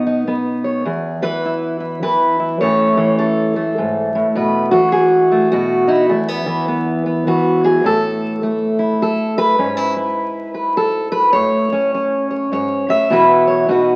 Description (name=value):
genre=folk, solo fingerstyle acoustic guitar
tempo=103 BPM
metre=3/4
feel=swing 62% on 8ths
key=E major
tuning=A4 = 438 Hz
part: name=fingerpicked steel-string acoustic guitar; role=solo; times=0.0-14.0 s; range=E2 to E5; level=-16 LUFS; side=equal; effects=none
room=wet studio reverb, RT60 0.8 s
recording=very old 78 rpm record, vinyl crackle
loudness=-17 LUFS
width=mono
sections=0.0-7.8 A section; 7.8-14.0 B section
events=none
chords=0.0 Badd9; 0.9 E; 2.6 A; 4.4 B7sus4; 5.5 B7; 6.1 Esus2; 7.8 A5; 9.6 E/G#; 11.3 A; 13.1 Bsus4